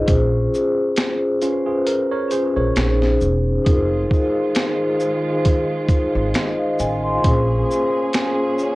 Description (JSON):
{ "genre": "lo-fi hip hop", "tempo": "67 BPM", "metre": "4/4", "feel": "swing 55% on 16ths", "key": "Bb minor", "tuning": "A4 = 439 Hz", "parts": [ { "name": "vibraphone with soft mallets", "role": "accompaniment", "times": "0.0-8.8 s", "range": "Db4 to C6", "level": "-19 LUFS", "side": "left 1 dB", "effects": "cassette tape, low-pass filter" }, { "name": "upright bass", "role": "bass", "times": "0.1-7.6 s", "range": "E1 to Bb1", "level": "-20 LUFS", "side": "equal", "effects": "none" }, { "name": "boom bap sampler-style drum kit", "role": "drums", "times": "0.1-8.8 s", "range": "finger snaps, hi-hat, kick drum, shaker, snare drum", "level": "-20 LUFS", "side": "equal", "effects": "none" }, { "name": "tine electric piano", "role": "second line", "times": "1.4-3.0 s", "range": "Db4 to Db5", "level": "-26 LUFS", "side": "right 5 dB", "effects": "auto-pan, low-pass filter, tape echo" }, { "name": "warm studio string section", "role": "sustained chords", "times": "3.7-8.8 s", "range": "Eb3 to Ab4", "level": "-28 LUFS", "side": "right 3 dB", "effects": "low-pass filter" } ], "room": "moderate small room reverb, RT60 0.6 s", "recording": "worn, warbling old tape, cassette tape, warbly pitch drift", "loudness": "-17 LUFS", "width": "side -19 dB against mid", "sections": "0.0-3.7 A section; 3.7-8.8 A section", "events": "kick muted 1.9-3.7", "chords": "0.1 Bbm7; 2.8 Bbm11; 3.7 Fm7; 7.2 Bbm7" }